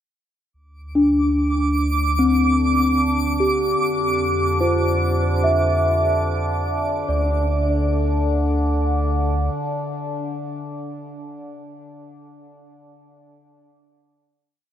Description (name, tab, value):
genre	ambient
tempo	74 BPM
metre	4/4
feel	straight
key	D minor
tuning	A4 = 436 Hz
part	warm sub bass	bass	0.5-9.5 s	D2 to F2	-22 LUFS	equal	none
part	overtone-sweeping drone	drone	2.1-11.2 s	D3 to D4	-26 LUFS	equal	chorus, built-in reverb
part	twinkling granular texture	texture	1.2-7.1 s	D6	-26 LUFS	right 1 dB	built-in reverb
part	celesta	arpeggios	1.0-12.9 s	C4 to E5	-20 LUFS	equal	tape echo
room	wet huge ambient reverb, RT60 7.7 s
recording	none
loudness	-18 LUFS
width	side -10 dB against mid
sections	0.5-7.1 A section; 7.1-10.4 final note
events	fade-in on synth drone 0.5-7.1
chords	0.5 D7sus4; 3.8 Fsus2; 7.1 N.C.